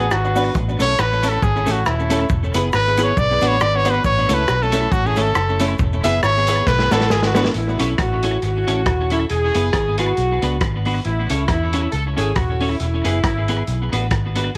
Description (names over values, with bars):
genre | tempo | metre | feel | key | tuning
ska | 137 BPM | 4/4 | swing 57% on 8ths | A major | A4 = 440 Hz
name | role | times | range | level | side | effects
brilliant trumpet | melody | 0.0-7.5 s | E4 to E5 | -22 LUFS | equal | none
clean electric guitar | accompaniment | 0.0-14.5 s | A3 to C#5 | -27 LUFS | equal | lush chorus, tape echo
honky-tonk upright piano | stabs | 0.0-7.5 s | B3 to C#5 | -28 LUFS | equal | tape echo
vintage muted fingered electric bass | bass | 0.0-14.6 s | D#1 to E2 | -24 LUFS | equal | none
vintage drum kit | drums | 0.1-14.6 s | hi-hat, kick drum, rim click, snare drum | -26 LUFS | equal | tape echo
cabasa | percussion | 0.1-7.4 s | none | -47 LUFS | equal | none
warm horn section | melody | 7.6-14.6 s | E4 to A4 | -25 LUFS | equal | none
room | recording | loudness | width
light reverb, studio ambience | none | -18 LUFS | mono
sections
0.0-7.5 A section; 7.5-14.6 B section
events
trumpet solo 0.0-7.5; drum fill 6.7-7.5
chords
0.0 Bm; 0.6 A; 2.3 E; 3.2 Bm; 4.0 A; 5.8 E; 6.7 Bm; 7.5 A; 9.3 E; 10.2 Bm; 11.0 A; 12.8 E; 13.7 Bm